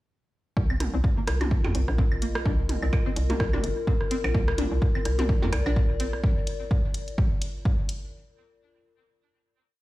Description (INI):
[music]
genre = minimal techno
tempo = 127 BPM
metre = 4/4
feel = swing 57% on 16ths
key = C minor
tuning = A4 = 435 Hz
[part]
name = hollow knocking FM bass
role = bass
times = 0.6-6.2 s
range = G1 to F2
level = -27 LUFS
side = equal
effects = sidechain pumping
[part]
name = electronic kick drum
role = drums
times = 0.6-7.8 s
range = none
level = -25 LUFS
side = equal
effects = overdrive
[part]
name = warbly tape-like pad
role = texture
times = 1.2-8.1 s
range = F4 to Eb5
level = -35 LUFS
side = left 3 dB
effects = chorus, built-in reverb, sidechain pumping
[part]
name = string-like resonator pluck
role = riff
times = 0.7-6.1 s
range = Bb3 to D4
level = -34 LUFS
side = equal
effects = analog chorus, sidechain pumping, ping-pong delay
[part]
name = minimal click drum kit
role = percussion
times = 0.7-6.2 s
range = claves, percussion blips, rim click, toms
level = -32 LUFS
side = right 2 dB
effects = dub echo
[part]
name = electronic hi-hat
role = drums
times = 0.8-8.0 s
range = none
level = -38 LUFS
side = left 1 dB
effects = none
[sound]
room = little or no reverb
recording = played on a big sound system in a bare room, stone room reverb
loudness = -23 LUFS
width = side -18 dB against mid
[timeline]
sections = 0.6-8.1 groove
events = filter sweep on synth pluck 0.6-6.2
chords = 0.6 Cm7